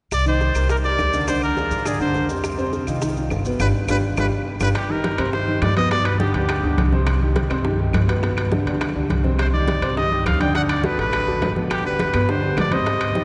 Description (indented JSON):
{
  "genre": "latin, salsa",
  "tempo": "207 BPM",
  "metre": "4/4",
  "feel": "straight",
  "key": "C minor",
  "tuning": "A4 = 440 Hz",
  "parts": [
    { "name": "bright trumpet", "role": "melody", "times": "0.1-6.9, 9.4-13.2 s", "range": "G4 to G5", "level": "-27 LUFS", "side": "equal", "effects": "none" },
    { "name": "upright bass", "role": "bass", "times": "0.1-13.2 s", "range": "G1 to Ab2", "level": "-25 LUFS", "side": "equal", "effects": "none" },
    { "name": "bongos", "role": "percussion", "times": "0.1-13.2 s", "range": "none", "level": "-33 LUFS", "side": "equal", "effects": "none" },
    { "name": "claves", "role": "percussion", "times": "0.1-13.2 s", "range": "none", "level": "-40 LUFS", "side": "equal", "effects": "none" },
    { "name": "maracas", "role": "percussion", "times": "0.1-4.7 s", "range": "none", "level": "-41 LUFS", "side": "equal", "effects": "none" },
    { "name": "clear baby grand piano", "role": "accompaniment", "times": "0.3-13.2 s", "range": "B2 to Eb5", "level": "-26 LUFS", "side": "equal", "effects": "none" },
    { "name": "congas", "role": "percussion", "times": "4.8-13.2 s", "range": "none", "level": "-30 LUFS", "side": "equal", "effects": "none" },
    { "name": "timbales", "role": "percussion", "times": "4.8-13.2 s", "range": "none", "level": "-32 LUFS", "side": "equal", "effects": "none" }
  ],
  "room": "wet cathedral reverb, RT60 5.8 s",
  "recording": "recorded in a church or concert hall, nothing above 10.9 kHz",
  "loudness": "-21 LUFS",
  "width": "mono",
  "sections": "0.1-4.8 A section; 4.8-13.2 B section",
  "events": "band accent 3.6-4.8",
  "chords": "0.1 Cm7; 1.3 Dm7b5; 2.4 F5; 3.6 G7(no3); 4.8 Cm; 5.9 G; 7.1 Cm; 8.2 G; 9.4 Cm; 10.5 D; 11.7 G"
}